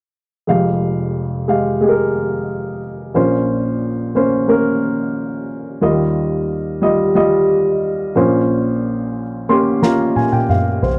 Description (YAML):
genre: piano-driven pop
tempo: 90 BPM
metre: 4/4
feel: straight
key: F minor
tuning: A4 = 440 Hz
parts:
  - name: dark upright piano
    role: accompaniment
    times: 0.5-11.0 s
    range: F1 to C6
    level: -17 LUFS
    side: equal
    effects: none
  - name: soft-mallet drum kit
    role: drums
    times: 9.8-11.0 s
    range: snare drum, toms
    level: -20 LUFS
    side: equal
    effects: none
room: little or no reverb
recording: dry, close 1970s-style studio recording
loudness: -17 LUFS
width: mono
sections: 0.5-11.0 A section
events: upright piano fill 9.2-11.0; drum fill 9.8-11.0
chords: 0.5 Fmadd9; 3.2 Bbmadd9; 5.8 Ebadd9; 8.2 Bbmadd9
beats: | 0.48 1.15 1.82 2.49 | 3.16 3.82 4.49 5.16 | 5.83 6.49 7.16 7.83 | 8.49 9.16 9.82 10.49